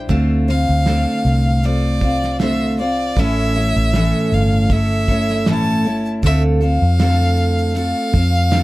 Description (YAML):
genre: acoustic pop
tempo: 78 BPM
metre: 4/4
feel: swing 55% on 16ths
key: D minor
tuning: A4 = 442 Hz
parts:
  - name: picked steel-string acoustic guitar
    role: accompaniment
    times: 0.0-8.6 s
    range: A2 to C5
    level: -19 LUFS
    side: equal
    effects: none
  - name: vintage muted fingered electric bass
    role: bass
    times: 0.0-8.6 s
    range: G1 to F2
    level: -17 LUFS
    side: equal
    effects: none
  - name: natural country drum kit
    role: drums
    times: 0.1-8.6 s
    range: kick drum, shaker, snare drum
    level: -20 LUFS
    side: right 1 dB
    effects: none
  - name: clear violin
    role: melody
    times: 0.5-8.6 s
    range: D5 to A5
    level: -22 LUFS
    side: equal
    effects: none
room: light reverb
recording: none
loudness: -14 LUFS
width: side -18 dB against mid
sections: 0.0-6.2 A section; 6.2-8.6 B section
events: none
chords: 0.1 Dm7; 3.2 A; 6.2 Dm7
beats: | 0.10 0.86 1.63 2.40 | 3.17 3.93 4.70 5.46 | 6.23 6.99 7.75 8.52